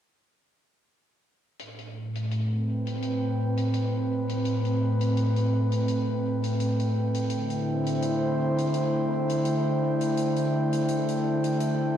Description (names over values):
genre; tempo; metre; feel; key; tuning
ambient dub; 84 BPM; 4/4; swing 55% on 16ths; A minor; A4 = 439 Hz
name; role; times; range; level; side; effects
airy breathy pad; sustained chords; 1.6-12.0 s; A2 to G5; -24 LUFS; equal; chorus
hi-hat; drums; 1.6-11.8 s; none; -42 LUFS; left 2 dB; low-pass filter on hats, small room reverb, low-pass filter on room
room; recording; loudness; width
light reverb; dark, warm production; -24 LUFS; side -10 dB against mid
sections
1.6-12.0 A section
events
filter sweep on analog synth pad 1.6-12.0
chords
1.6 Am7; 7.3 D7sus4